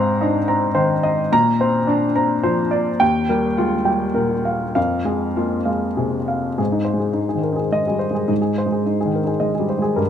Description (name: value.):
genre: neoclassical minimalist piano.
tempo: 97-108 BPM.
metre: 3/4.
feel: rubato.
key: unclear.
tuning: A4 = 440 Hz.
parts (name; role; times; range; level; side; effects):
warm baby grand piano; solo; 0.0-10.1 s; Eb2 to Bb5; -17 LUFS; equal; tape echo.
room: little or no reverb.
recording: close, detailed microphones.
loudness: -17 LUFS.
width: side -9 dB against mid.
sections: 0.0-6.6 A section; 6.6-10.1 B section.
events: none.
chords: 0.0 Abadd9; 1.3 Bbadd9; 3.0 Ebadd9; 4.8 Fm; 6.6 Ab.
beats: 0.21 0.76 | 1.32 1.88 2.45 | 3.01 3.58 4.16 | 4.76 5.37 5.99 | 6.59 7.17 7.74 | 8.31 8.87 9.43 | 10.00.